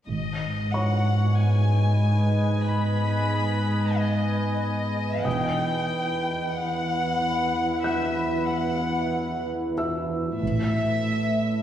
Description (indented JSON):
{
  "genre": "cinematic, suspense film score",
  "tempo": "93 BPM",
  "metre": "4/4",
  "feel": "straight",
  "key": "G# phrygian",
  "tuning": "A4 = 440 Hz",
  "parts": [
    { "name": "rich chamber violin section", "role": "melody", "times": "0.1-11.6 s", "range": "D#5 to B5", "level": "-29 LUFS", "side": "left 2 dB", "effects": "none" },
    { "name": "deep dark ambient pad", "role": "sustained chords", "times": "0.8-11.6 s", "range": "E4 to A5", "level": "-30 LUFS", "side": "right 1 dB", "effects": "chorus, built-in reverb" },
    { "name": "dark studio cello section", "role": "bass", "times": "0.1-11.6 s", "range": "E2 to A2", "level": "-25 LUFS", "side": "equal", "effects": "none" },
    { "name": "rich studio double bass section", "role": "bass", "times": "0.1-0.7, 5.3-5.9, 10.4-11.0 s", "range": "E1 to A1", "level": "-31 LUFS", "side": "right 2 dB", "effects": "none" },
    { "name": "felt-muted upright piano", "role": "texture", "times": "0.7-11.6 s", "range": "C#5 to F#6", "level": "-35 LUFS", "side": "left 1 dB", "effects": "none" }
  ],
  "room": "wet scoring stage reverb, RT60 1.6 s",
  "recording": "heard from further back in the room",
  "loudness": "-22 LUFS",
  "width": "side -11 dB against mid",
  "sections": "0.1-11.6 A section",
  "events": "none",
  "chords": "0.1 G#m; 5.3 Emadd9; 10.4 Aadd9"
}